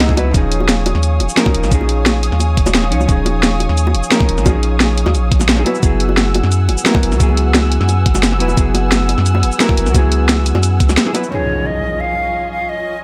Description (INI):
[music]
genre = liquid drum and bass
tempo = 175 BPM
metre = 4/4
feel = straight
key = unclear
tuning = A4 = 441 Hz
[part]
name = hollow-body jazz guitar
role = accompaniment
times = 0.0-13.0 s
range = F3 to Db5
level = -23 LUFS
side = equal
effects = delay
[part]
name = muted studio string section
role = sustained chords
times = 0.0-13.0 s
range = Cb4 to Fb6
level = -26 LUFS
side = equal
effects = sidechain pumping
[part]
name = warm sub bass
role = bass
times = 0.0-11.0 s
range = Eb1 to Gb2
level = -18 LUFS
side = equal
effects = none
[part]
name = drum and bass drum kit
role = drums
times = 0.0-11.3 s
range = hi-hat, shaker, snare drum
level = -19 LUFS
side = equal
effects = low-pass filter on hats, studio reverb, low-pass filter on snare, low-pass filter on perc
[part]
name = swell and impact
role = sound effects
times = 0.0-0.3, 11.3-12.7 s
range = none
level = -27 LUFS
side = equal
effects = none
[part]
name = electronic kick drum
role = drums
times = 0.1-10.9 s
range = none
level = -16 LUFS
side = equal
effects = studio reverb
[part]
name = bongos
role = percussion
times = 0.2-11.2 s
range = none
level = -25 LUFS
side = equal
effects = none
[part]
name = silver concert flute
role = melody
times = 11.3-13.0 s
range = Db5 to F5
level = -22 LUFS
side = equal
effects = tape echo
[sound]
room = light reverb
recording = none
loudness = -14 LUFS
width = mono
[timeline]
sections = 0.0-11.3 A section; 11.3-13.0 B section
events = swell 0.0-0.3; impact 11.3-12.7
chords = 0.3 Eb9sus4; 5.7 Gb9sus4; 11.3 Eb9sus4